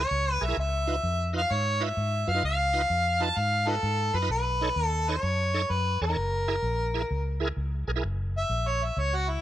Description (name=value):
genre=electric blues shuffle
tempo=129 BPM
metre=4/4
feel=swing 66% on 8ths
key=unclear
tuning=A4 = 441 Hz
part: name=mellow harmonica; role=melody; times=0.0-9.4 s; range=E4 to A5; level=-27 LUFS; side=equal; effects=overdrive
part: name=bright tonewheel organ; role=accompaniment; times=0.0-8.0 s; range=D#4 to C#5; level=-34 LUFS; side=right 4 dB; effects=slow rotary speaker, overdrive, chorus vibrato
part: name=vintage muted fingered electric bass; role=bass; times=0.0-9.4 s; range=F#1 to G#2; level=-29 LUFS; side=equal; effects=none
room=light reverb, small room ambience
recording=none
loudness=-25 LUFS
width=side -12 dB against mid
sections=0.0-8.0 A section; 8.0-9.4 B section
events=harmonica solo 8.0-9.4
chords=0.0 F#9 (rootless); 0.6 C#9; 4.3 B9; 6.2 F#9; 8.0 F#